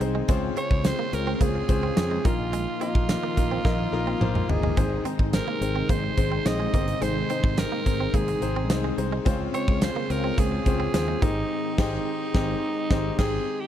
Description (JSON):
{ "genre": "1980s-style pop", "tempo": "107 BPM", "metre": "4/4", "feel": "straight", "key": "unclear", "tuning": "A4 = 440 Hz", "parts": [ { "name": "clear grand piano", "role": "accompaniment", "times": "0.0-13.7 s", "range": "Ab2 to Eb5", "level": "-30 LUFS", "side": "left 7 dB", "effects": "none" }, { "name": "string machine, violins", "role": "sustained chords", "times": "0.0-13.7 s", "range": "C3 to G5", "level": "-33 LUFS", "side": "equal", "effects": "ensemble chorus" }, { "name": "direct-recorded clean electric guitar", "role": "riff", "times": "0.0-11.3 s", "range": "Ab3 to C4", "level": "-34 LUFS", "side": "right 10 dB", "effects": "analog chorus, tape echo" }, { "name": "fretless electric bass", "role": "bass", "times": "0.0-13.4 s", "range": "G1 to F2", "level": "-29 LUFS", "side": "equal", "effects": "none" }, { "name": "gated 80s drum kit", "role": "drums", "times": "0.0-13.4 s", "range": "crash cymbal, hi-hat, kick drum, snare drum, tambourine, toms", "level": "-26 LUFS", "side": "equal", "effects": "none" }, { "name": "raspy alto saxophone", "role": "melody", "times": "0.6-13.7 s", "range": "Eb4 to Eb5", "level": "-30 LUFS", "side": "right 3 dB", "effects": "tape echo" } ], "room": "little or no reverb", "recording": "none", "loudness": "-22 LUFS", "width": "side -10 dB against mid", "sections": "0.0-13.7 A section", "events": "drum fill 3.7-4.8; band accent 11.5-13.7", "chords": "0.3 Dbmaj7; 2.2 Bbsus4; 4.8 Ab; 9.3 Dbmaj7; 11.2 Abmaj7" }